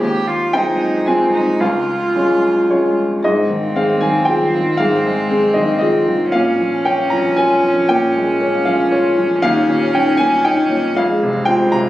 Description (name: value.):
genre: neoclassical piano and strings.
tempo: 116 BPM.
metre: 3/4.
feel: rubato.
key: Ab major.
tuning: A4 = 440 Hz.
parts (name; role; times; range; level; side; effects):
rich cello; second line; 0.0-11.9 s; Ab3 to G4; -20 LUFS; right 2 dB; none.
clear upright piano; accompaniment; 0.0-11.9 s; Db2 to Bb5; -15 LUFS; equal; none.
marimba with medium mallets; arpeggios; 3.2-11.9 s; Eb4 to Ab5; -20 LUFS; left 1 dB; slapback echo.
room: light reverb.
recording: recorded on a phone in the room, club reverb.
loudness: -13 LUFS.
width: side -15 dB against mid.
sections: 0.0-3.2 A section; 3.2-11.9 B section.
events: none.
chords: 0.0 Ab6/Eb; 1.6 Db; 3.2 Ab6; 6.3 Bbm7; 9.4 Eb7; 10.9 Fmadd9.